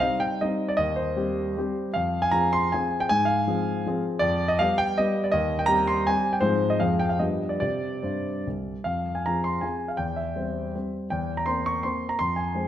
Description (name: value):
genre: classical, romantic triple-time dance for piano with dotted rhythms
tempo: 137-180 BPM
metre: 3/4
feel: rubato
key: C minor, F minor from 8.9 s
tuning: A4 = 440 Hz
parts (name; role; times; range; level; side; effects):
- warm concert grand piano; solo; 0.0-12.7 s; C2 to Db6; -23 LUFS; equal; none
room: wet recital hall reverb, RT60 1.4 s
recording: none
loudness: -23 LUFS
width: side -11 dB against mid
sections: 0.0-8.9 A section; 8.9-12.7 B section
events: none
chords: 0.0 Cm; 0.8 Cm/Eb; 1.9 Fm; 3.1 Fm/Ab; 4.2 G7/F; 5.3 Cm/Eb; 6.4 Fm/Ab; 6.8 Fm; 7.2 G7; 7.6 C5; 8.9 Fm; 10.0 C/E; 11.1 C7/E